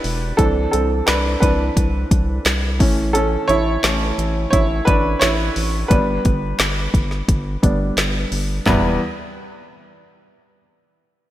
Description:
piano-driven pop; 87 BPM; 4/4; straight; E minor; A4 = 437 Hz
clear upright piano; accompaniment; 0.0-9.0 s; E2 to D5; -20 LUFS; right 1 dB
round analog bass; bass; 0.0-9.0 s; E1 to C2; -22 LUFS; equal
deep house drum kit; drums; 0.0-8.8 s; handclaps, hi-hat, kick drum, snare drum, toms; -19 LUFS; equal; gated reverb
light reverb; bright 1980s-style digital production; -16 LUFS; side -14 dB against mid
0.0-8.7 A section; 8.7-11.3 B section
upright piano solo 0.0-8.7
0.4 Cadd9; 2.8 A; 5.9 G; 8.7 Em

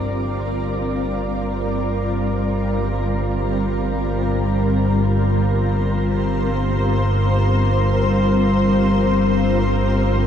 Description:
ambient; free time; G minor; A4 = 441 Hz
granular cloud pad; sustained chords; 0.0-10.3 s; G3 to D5; -21 LUFS; equal; built-in reverb, shimmer reverb
analog drone; drone; 0.0-10.3 s; G1 to G2; -19 LUFS; equal; lush chorus
moderate huge ambient reverb, RT60 8.7 s; dreamy mix soaked in reverb, cassette tape; -17 LUFS; side -8 dB against mid
0.0-10.3 A section
0.0 Gm7

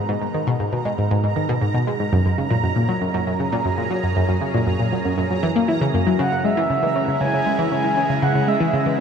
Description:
ambient, sequencer-driven space music; 118 BPM; 4/4; straight; A4 = 439 Hz
lush unison pad; sustained chords; 0.0-9.0 s; C#3 to B4; -28 LUFS; equal; chorus
analog pluck; riff; 0.0-9.0 s; F#2 to C#4; -20 LUFS; equal; chorus, phaser, ping-pong delay
bubbling stepped-filter texture; texture; 0.0-9.0 s; A#5; -30 LUFS; right 6 dB; chorus, built-in reverb
breathy flute-like synth lead; melody; 6.2-9.0 s; E5 to G#5; -22 LUFS; right 1 dB; chorus, ping-pong delay
wet huge ambient reverb, RT60 8.1 s; dark, warm production; -18 LUFS; side -7 dB against mid
0.0-9.0 A section
fade-in on analog synth pad 0.0-9.0
0.0 G#m; 2.1 F#; 6.2 C#m

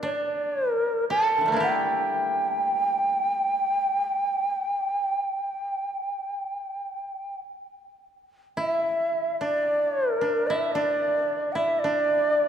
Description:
japanese traditional, Japanese chamber music; 51-60 BPM; 4/4; rubato; G kumoi; A4 = 443 Hz
breathy shakuhachi; melody; 0.0-12.5 s; D5 to A5; -24 LUFS; right 1 dB
koto; second line; 0.0-12.5 s; D3 to Bb4; -30 LUFS; equal
wet church reverb, RT60 3.6 s; minimal, uncompressed stereo recording; -23 LUFS; side -8 dB against mid
0.0-8.6 A section; 8.6-12.5 B section

